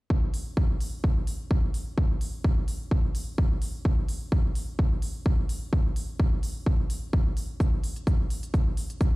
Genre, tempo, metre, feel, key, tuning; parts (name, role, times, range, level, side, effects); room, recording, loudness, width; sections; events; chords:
piano house; 128 BPM; 4/4; swing 54% on 16ths
electronic kick drum; drums; 0.1-9.1 s; -24 LUFS; equal
electronic hi-hat; drums; 0.3-9.1 s; -44 LUFS; right 1 dB
little or no reverb; played on a big sound system in a bare room, large studio reverb; -25 LUFS; side -21 dB against mid
0.1-9.2 A section